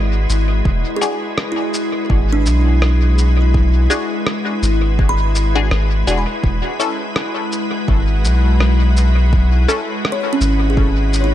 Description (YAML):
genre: ambient dub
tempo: 83 BPM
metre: 4/4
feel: swing 58% on 16ths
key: E mixolydian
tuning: A4 = 440 Hz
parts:
  - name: soft additive organ-like pad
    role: sustained chords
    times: 0.0-11.3 s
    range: G#3 to B4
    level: -22 LUFS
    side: left 2 dB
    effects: ensemble chorus, built-in reverb
  - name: kalimba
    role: arpeggios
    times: 0.0-11.3 s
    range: C#4 to B5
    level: -24 LUFS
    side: right 3 dB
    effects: tape echo
  - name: soft dub sub bass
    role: bass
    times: 0.0-11.3 s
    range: E1 to B1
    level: -14 LUFS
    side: equal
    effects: none
  - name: electronic cabasa and rim click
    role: drums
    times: 0.3-11.3 s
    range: none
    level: -25 LUFS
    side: equal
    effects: studio reverb, dub echo
  - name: electronic kick drum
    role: drums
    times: 0.7-10.9 s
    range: none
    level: -18 LUFS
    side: equal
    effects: overdrive, studio reverb
  - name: filtered dub chord stab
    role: stabs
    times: 1.0-9.9 s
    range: C#4 to A4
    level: -24 LUFS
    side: left 3 dB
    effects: phaser, cassette tape, dub echo
room: digital ambience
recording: none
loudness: -14 LUFS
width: side -12 dB against mid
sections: 0.0-11.3 A section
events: none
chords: 0.0 E7; 6.4 A/E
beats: | 0.65 1.37 2.10 2.82 | 3.54 4.26 4.99 5.71 | 6.43 7.16 7.88 8.60 | 9.32 10.05 10.77